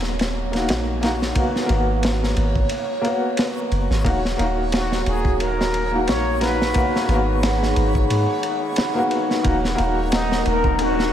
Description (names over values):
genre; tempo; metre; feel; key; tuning
trip hop; 89 BPM; 4/4; swing 55% on 16ths; Eb minor; A4 = 441 Hz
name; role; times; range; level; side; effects
felt-muted upright piano; accompaniment; 0.0-11.1 s; Bb3 to Gb4; -24 LUFS; left 1 dB; tremolo, tape echo
soft 808-style bass; bass; 0.0-11.1 s; Eb1 to Ab2; -23 LUFS; equal; none
crunchy breakbeat drum kit; drums; 0.0-11.1 s; kick drum, ride cymbal, snare drum; -24 LUFS; equal; none
backwards swelling texture; texture; 0.0-11.1 s; Db5; -31 LUFS; right 2 dB; built-in reverb
dark analog pad; sustained chords; 4.1-11.1 s; Eb4 to Cb6; -25 LUFS; left 1 dB; chorus
trumpet with plunger mute; melody; 4.8-11.1 s; Eb4 to Db5; -26 LUFS; equal; tape echo
riser; sound effects; 9.9-11.1 s; none; -28 LUFS; equal; none
room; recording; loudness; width
wet cathedral reverb, RT60 5.5 s; dreamy mix soaked in reverb; -18 LUFS; side -10 dB against mid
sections
0.0-11.1 A section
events
riser 9.9-11.1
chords
0.0 Ebm; 1.4 Abm7; 4.1 Ebm; 6.8 Abm7; 9.4 Ebm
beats
0.01 0.68 | 1.36 2.03 2.71 3.38 | 4.05 4.73 5.40 6.08 | 6.75 7.43 8.10 8.77 | 9.45 10.12 10.80